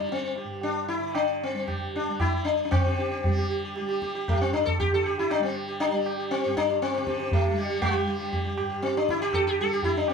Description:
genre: indian classical, Hindustani.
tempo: 117 BPM.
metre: 5/4.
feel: straight.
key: G raga durga.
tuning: A4 = 440 Hz.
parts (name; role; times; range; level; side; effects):
sitar; melody; 0.0-10.1 s; G3 to A4; -26 LUFS; left 1 dB; none.
tanpura; drone; 0.0-10.1 s; G2 to G3; -35 LUFS; right 1 dB; none.
tabla; percussion; 0.1-10.1 s; none; -29 LUFS; right 1 dB; none.
room: moderate small room reverb, RT60 0.5 s.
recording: none.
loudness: -24 LUFS.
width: side -6 dB against mid.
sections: 0.0-2.7 A section; 2.7-10.1 B section.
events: speeding up 0.0-10.1.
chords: none.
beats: | 0.09 0.62 1.14 1.67 2.19 | 2.71 3.23 3.75 4.26 4.78 | 5.29 5.80 6.31 6.82 7.32 | 7.83 8.33 8.83 9.33 9.83.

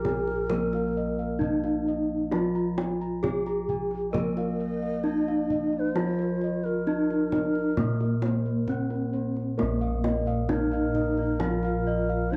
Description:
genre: Javanese gamelan.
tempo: 66 BPM.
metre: 4/4.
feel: straight.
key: Bb slendro.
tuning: A4 = 439 Hz.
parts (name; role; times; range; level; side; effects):
gamelan-type bronze metallophone; melody; 0.0-12.4 s; Bb3 to Bb4; -31 LUFS; equal; none.
breathy bass bansuri; second line; 0.0-12.4 s; Bb4 to Eb5; -36 LUFS; equal; none.
gamelan-type bronze metallophone; accompaniment; 0.0-12.4 s; F3+20c to Bb3; -35 LUFS; equal; none.
gamelan-type bossed gongs; arpeggios; 0.0-12.4 s; Bb4 to Bb5; -39 LUFS; equal; none.
gamelan-type bossed gongs; bass; 0.0-12.4 s; Bb1 to Bb4; -34 LUFS; equal; none.
kendang; percussion; 0.0-11.7 s; none; -37 LUFS; equal; none.
gamelan-type bronze metallophone; arpeggios; 9.6-12.4 s; Bb4 to F5+20c; -39 LUFS; equal; none.
room: light reverb.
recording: worn, warbling old tape, cassette tape, warbly pitch drift.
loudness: -27 LUFS.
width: mono.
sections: 0.0-9.6 A section; 9.6-12.4 A section.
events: none.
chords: none.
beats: 0.51 1.42 | 2.32 3.23 4.14 5.05 | 5.96 6.87 7.78 8.69 | 9.60 10.51 11.41 12.32.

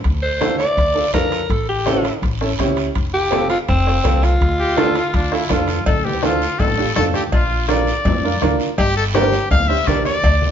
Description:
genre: latin, cumbia.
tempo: 165 BPM.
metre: 4/4.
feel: straight.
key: D minor.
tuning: A4 = 440 Hz.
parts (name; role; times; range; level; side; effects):
upright bass; bass; 0.0-10.5 s; F1 to F2; -21 LUFS; equal; none.
bombo; percussion; 0.0-10.4 s; none; -24 LUFS; left 2 dB; none.
guiro; percussion; 0.0-10.5 s; none; -31 LUFS; right 5 dB; none.
timbales and cowbell; percussion; 0.0-10.4 s; none; -29 LUFS; right 1 dB; none.
congas; percussion; 0.1-10.5 s; none; -25 LUFS; left 2 dB; none.
raspy alto saxophone; melody; 0.2-5.7 s; C4 to D5; -19 LUFS; left 1 dB; none.
bright upright piano; accompaniment; 0.4-10.1 s; C4 to C5; -22 LUFS; right 4 dB; none.
bright trumpet; second line; 4.6-10.5 s; D4 to F5; -21 LUFS; left 2 dB; none.
room: moderate stone room reverb, RT60 1.0 s.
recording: band playing live in one room, nothing above 7.5 kHz.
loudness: -15 LUFS.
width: side -8 dB against mid.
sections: 0.0-5.9 A section; 5.9-10.5 B section.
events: trumpet solo 5.9-10.5.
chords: 0.0 Dm; 1.5 A7; 3.0 F; 4.4 Dm; 7.3 Bb; 8.8 Gm.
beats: | 0.04 0.41 0.77 1.14 | 1.50 1.86 2.23 2.59 | 2.96 3.32 3.69 4.05 | 4.42 4.78 5.14 5.51 | 5.87 6.24 6.60 6.96 | 7.33 7.69 8.05 8.42 | 8.78 9.14 9.51 9.87 | 10.24.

